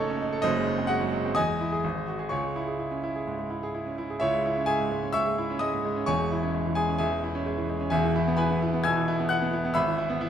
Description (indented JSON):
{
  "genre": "classical, virtuoso piano study",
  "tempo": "129 BPM",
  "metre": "4/4",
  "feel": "rubato",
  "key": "C# minor",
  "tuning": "A4 = 441 Hz",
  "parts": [
    { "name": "clear grand piano", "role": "solo", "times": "0.0-10.3 s", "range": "E1 to G#6", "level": "-24 LUFS", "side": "equal", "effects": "none" }
  ],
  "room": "wet recital hall reverb, RT60 1.6 s",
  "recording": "close, detailed microphones",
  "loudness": "-24 LUFS",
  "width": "side -9 dB against mid",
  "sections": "0.0-4.2 A section; 4.2-10.3 B section",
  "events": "none",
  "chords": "0.4 G#7/F#; 1.4 Emaj7; 1.8 G#5; 2.3 C#m; 6.1 C#m/E; 7.9 E; 9.8 E/G#"
}